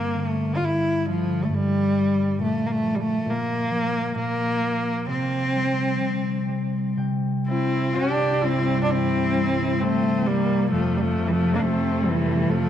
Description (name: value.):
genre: celtic folk, Celtic slow air.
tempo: 59-69 BPM.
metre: 3/4.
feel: rubato.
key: unclear.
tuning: A4 = 443 Hz.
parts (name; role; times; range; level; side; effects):
warm cello; melody; 0.0-12.7 s; E3 to F4; -23 LUFS; equal; none.
concert harp; accompaniment; 0.0-12.7 s; F2 to G5; -26 LUFS; equal; none.
warm viola; second line; 7.5-12.7 s; G3 to G4; -27 LUFS; left 4 dB; none.
warm symphonic string section; sustained chords; 8.0-12.7 s; C2 to A3; -30 LUFS; right 2 dB; none.
room: moderate church reverb, RT60 3.3 s.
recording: dark, warm production.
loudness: -21 LUFS.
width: side -10 dB against mid.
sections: 0.0-8.0 A section; 8.0-12.7 B section.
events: harp fill 6.5-8.0.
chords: 0.0 G5; 2.4 Bb5; 5.1 C5; 8.0 C; 10.7 F.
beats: 0.59 1.50 | 2.39 3.28 4.16 | 5.08 6.00 6.97 | 7.96 8.90 9.82 | 10.72 11.61 12.49.